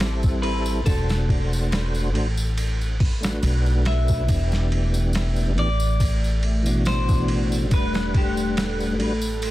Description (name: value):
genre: trip hop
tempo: 70 BPM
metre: 4/4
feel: swing 54% on 16ths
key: E minor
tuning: A4 = 439 Hz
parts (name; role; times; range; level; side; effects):
- clean electric guitar; melody; 0.0-9.0 s; G4 to E5; -31 LUFS; left 2 dB; vintage 12-bit sampler grit, tape echo
- tonewheel organ; accompaniment; 0.0-9.1 s; B2 to F#5; -28 LUFS; equal; overdrive, chorus vibrato, slow rotary speaker, harmonic tremolo, tape echo
- upright bass; bass; 0.0-9.5 s; E1 to B1; -23 LUFS; equal; none
- boom bap sampler-style drum kit; drums; 0.0-9.5 s; hi-hat, kick drum, ride cymbal, snare drum; -25 LUFS; equal; vintage 12-bit sampler grit
- tambourine; percussion; 0.2-9.5 s; none; -37 LUFS; equal; none
- dark analog pad; sustained chords; 4.3-9.5 s; A3 to A4; -29 LUFS; left 1 dB; chorus
room: little or no reverb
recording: dense, heavily limited modern master, vinyl crackle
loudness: -20 LUFS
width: side -16 dB against mid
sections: 0.0-9.5 A section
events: none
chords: 0.0 Cmaj7; 0.9 D7/E; 4.3 Em7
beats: 0.00 | 0.86 1.71 2.57 3.43 | 4.29 5.14 6.00 6.86 | 7.71 8.57 9.43